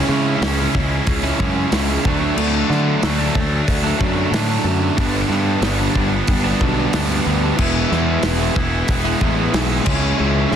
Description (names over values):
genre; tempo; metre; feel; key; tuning
quiet-loud alternative rock; 92 BPM; 4/4; straight; unclear; A4 = 440 Hz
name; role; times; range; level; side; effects
fuzz guitar; riff; 0.0-10.6 s; G2 to E4; -21 LUFS; right 1 dB; distortion
tight distorted guitar; riff; 0.0-10.6 s; G2 to E4; -22 LUFS; equal; distortion
fuzz picked electric bass; bass; 0.1-10.6 s; E1 to D3; -21 LUFS; equal; overdrive
loose indie drum kit; drums; 0.4-10.6 s; crash cymbal, hi-hat, kick drum, snare drum; -23 LUFS; equal; none
room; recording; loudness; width
little or no reverb; dense, heavily limited modern master; -16 LUFS; side -8 dB against mid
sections
0.0-10.6 A section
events
none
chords
0.0 C#m; 2.0 D; 5.0 G; 7.6 E; 9.9 C#m